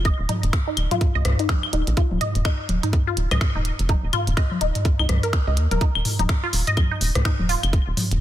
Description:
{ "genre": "minimal techno", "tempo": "125 BPM", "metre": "4/4", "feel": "swing 60% on 16ths", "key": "unclear", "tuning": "A4 = 440 Hz", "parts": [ { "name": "rubbery square bass", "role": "bass", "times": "0.0-8.2 s", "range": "Eb1 to Eb2", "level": "-22 LUFS", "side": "equal", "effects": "sidechain pumping" }, { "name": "resonant blip pluck", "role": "riff", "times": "0.1-7.5 s", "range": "Eb4 to Eb5", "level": "-27 LUFS", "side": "left 1 dB", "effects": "phaser, sidechain pumping, ping-pong delay" }, { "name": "electronic kick drum", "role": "drums", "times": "0.1-7.8 s", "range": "none", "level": "-20 LUFS", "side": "equal", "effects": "overdrive" }, { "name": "minimal click drum kit", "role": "drums", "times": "0.1-8.2 s", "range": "finger snaps, hi-hat", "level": "-29 LUFS", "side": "right 1 dB", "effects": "none" }, { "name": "booming analog drum machine", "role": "percussion", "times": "0.3-8.1 s", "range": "claves, congas, rim click, toms", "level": "-26 LUFS", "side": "left 1 dB", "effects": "none" } ], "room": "digital ambience", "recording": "dense, heavily limited modern master", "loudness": "-19 LUFS", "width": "side -12 dB against mid", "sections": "0.0-8.2 A section", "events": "none", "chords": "0.0 Eb5" }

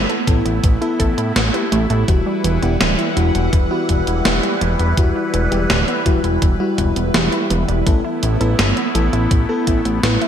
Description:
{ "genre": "synthwave", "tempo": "83 BPM", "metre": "4/4", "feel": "straight", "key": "E minor", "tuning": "A4 = 442 Hz", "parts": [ { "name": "phased analog pad", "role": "sustained chords", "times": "0.0-10.3 s", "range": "E3 to F#5", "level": "-22 LUFS", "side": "right 2 dB", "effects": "phaser, chorus, sidechain pumping" }, { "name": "wide unison pluck", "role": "arpeggios", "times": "0.0-10.3 s", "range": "E3 to B4", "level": "-25 LUFS", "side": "right 3 dB", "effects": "cassette tape, ping-pong delay" }, { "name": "fat analog bass", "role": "bass", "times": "0.0-10.2 s", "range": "D1 to A2", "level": "-19 LUFS", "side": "equal", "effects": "sidechain pumping" }, { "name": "gated 80s digital drum machine", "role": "drums", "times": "0.1-10.3 s", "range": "hi-hat, snare drum", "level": "-21 LUFS", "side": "right 1 dB", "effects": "gated reverb, gated reverb snare" }, { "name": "FM electric piano with soft pad layer", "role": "stabs", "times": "0.3-10.3 s", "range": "G3 to B4", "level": "-23 LUFS", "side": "left 4 dB", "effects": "chorus, ping-pong delay" }, { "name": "electronic kick drum", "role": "drums", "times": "0.3-9.8 s", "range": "none", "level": "-16 LUFS", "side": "equal", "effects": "none" } ], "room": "moderate lush hall reverb, RT60 1.8 s, digital ambience", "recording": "bright 1980s-style digital production", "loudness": "-14 LUFS", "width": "side -9 dB against mid", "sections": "0.0-10.3 A section", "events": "none", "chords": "0.0 Asus2; 2.1 Emadd9; 7.9 Asus2" }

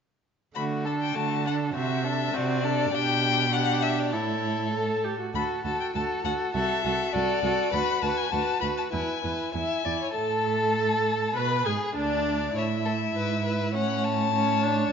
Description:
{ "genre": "quick classical-period movement for string quartet", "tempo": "100 BPM", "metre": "2/4", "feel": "straight", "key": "D major, A major from 7.7 s", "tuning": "A4 = 440 Hz", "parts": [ { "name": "rich violin", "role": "melody", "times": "0.6-14.9 s", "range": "C#5 to B5", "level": "-29 LUFS", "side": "left 10 dB", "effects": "none" }, { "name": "warm violin", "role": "second line", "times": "0.6-14.9 s", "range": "D4 to E5", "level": "-31 LUFS", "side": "left 2 dB", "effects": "none" }, { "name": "warm viola", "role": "accompaniment", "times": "0.6-14.9 s", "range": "A3 to B4", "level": "-30 LUFS", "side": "right 3 dB", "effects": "none" }, { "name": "warm cello", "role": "bass", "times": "0.6-14.9 s", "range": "C2 to D3", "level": "-30 LUFS", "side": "right 5 dB", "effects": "none" } ], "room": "moderate scoring stage reverb, RT60 1.8 s", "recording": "nothing above 7.6 kHz", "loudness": "-24 LUFS", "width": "side -6 dB against mid", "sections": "0.6-10.2 A section; 10.2-14.9 B section", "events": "none", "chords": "0.6 D; 1.8 D7/C; 2.9 G/B; 4.1 A; 5.3 D; 6.6 D7/C; 7.7 Bm/D; 8.9 E; 10.2 N.C.; 11.4 G#dim; 12.6 A5; 13.2 E/G#; 13.7 A" }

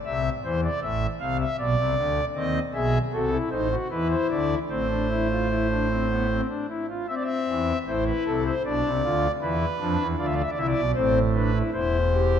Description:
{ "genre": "classical, baroque-style 3-part fugue for pipe organ", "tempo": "77 BPM", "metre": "3/4", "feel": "straight", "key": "A minor", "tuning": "A4 = 440 Hz", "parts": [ { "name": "pipe organ, foundations", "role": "solo", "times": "0.1-12.4 s", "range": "E1 to F5", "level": "-22 LUFS", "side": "equal", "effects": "none" } ], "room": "wet concert hall reverb, RT60 2.4 s", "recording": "none", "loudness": "-22 LUFS", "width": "side -8 dB against mid", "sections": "0.0-7.1 A section; 7.1-11.7 B section", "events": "none", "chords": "0.1 Am/C; 1.6 Bm; 2.4 D#dim7; 3.9 E5; 4.7 Am; 8.7 Bdim; 9.4 E5; 11.0 Am; 11.7 C/E" }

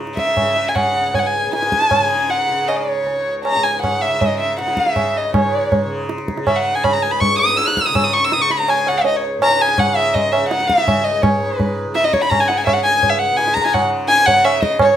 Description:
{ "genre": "indian classical, Hindustani", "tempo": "154-171 BPM", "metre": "4/4", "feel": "straight", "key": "C# raga bhimpalasi", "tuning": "A4 = 440 Hz", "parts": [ { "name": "tanpura", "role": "drone", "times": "0.0-15.0 s", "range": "C#2 to C#3", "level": "-26 LUFS", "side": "equal", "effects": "none" }, { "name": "tabla", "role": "percussion", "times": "0.1-14.9 s", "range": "none", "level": "-20 LUFS", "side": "right 2 dB", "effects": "none" }, { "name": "dark violin", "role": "melody", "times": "0.2-15.0 s", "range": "C#5 to F#6", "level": "-16 LUFS", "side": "left 1 dB", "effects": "slapback echo" } ], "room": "moderate studio reverb, RT60 0.6 s", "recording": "none", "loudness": "-14 LUFS", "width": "side -10 dB against mid", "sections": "0.0-5.3 A section; 5.3-15.0 B section", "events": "speeding up 0.0-15.0", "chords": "none" }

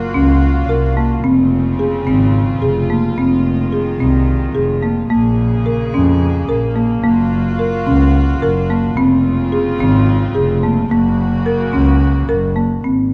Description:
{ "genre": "contemporary instrumental, chamber music in an uneven meter", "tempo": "217 BPM (eighths)", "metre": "7/8", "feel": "straight", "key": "Gb lydian", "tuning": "A4 = 438 Hz", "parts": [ { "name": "rich chamber string section", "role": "sustained chords", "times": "0.0-12.8 s", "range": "Db3 to Ab4", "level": "-26 LUFS", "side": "equal", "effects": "none" }, { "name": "folk marimba with medium mallets", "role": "arpeggios", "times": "0.0-13.1 s", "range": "Bb3 to Bb4", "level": "-18 LUFS", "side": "equal", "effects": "none" }, { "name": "muted double bass", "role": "bass", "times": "0.1-13.1 s", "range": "F1 to F2", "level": "-19 LUFS", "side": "equal", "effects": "none" } ], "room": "moderate concert hall reverb, RT60 2.0 s", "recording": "dark, warm production, nothing above 10.5 kHz", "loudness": "-15 LUFS", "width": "mono", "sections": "0.0-12.8 A section", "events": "none", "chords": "0.0 Gbmaj7; 1.2 Dbmaj7/F; 3.2 Fm7; 5.1 Bbm7; 7.0 Gbmaj7; 9.0 Dbmaj7/F; 10.9 Gb" }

